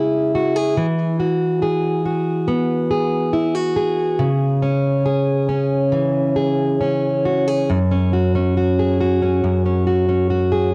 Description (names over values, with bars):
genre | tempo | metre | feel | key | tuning
pop | 69 BPM | 4/4 | straight | unclear | A4 = 438 Hz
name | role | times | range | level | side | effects
fingerpicked plugged-in steel-string acoustic guitar | solo | 0.0-10.7 s | F#2 to G#4 | -19 LUFS | equal | cassette tape
room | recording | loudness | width
light reverb | home recording on cassette | -19 LUFS | mono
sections
0.0-7.7 A section; 7.7-10.7 B section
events
none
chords
0.0 C#m; 0.8 Eadd9; 4.2 C#m; 7.7 F#sus2